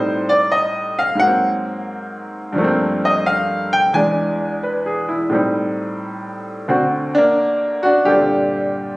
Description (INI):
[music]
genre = solo jazz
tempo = 88 BPM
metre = 4/4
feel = swing 69% on 8ths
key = G minor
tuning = A4 = 440 Hz
[part]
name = bright baby grand piano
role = solo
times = 0.0-9.0 s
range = D2 to G#5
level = -16 LUFS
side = equal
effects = none
[sound]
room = moderate club reverb, RT60 0.7 s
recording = recorded on a phone in the room, club reverb, compression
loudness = -15 LUFS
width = side -21 dB against mid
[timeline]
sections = 0.0-8.1 A section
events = grand piano solo 0.0-8.1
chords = 0.0 Am7b5; 1.2 Ab9; 2.6 Gm11; 3.9 E7; 5.3 Am7b5; 6.7 D7; 8.1 Gm11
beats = 0.51 1.20 1.88 | 2.57 3.25 3.94 4.62 | 5.31 6.00 6.68 7.37 | 8.05 8.74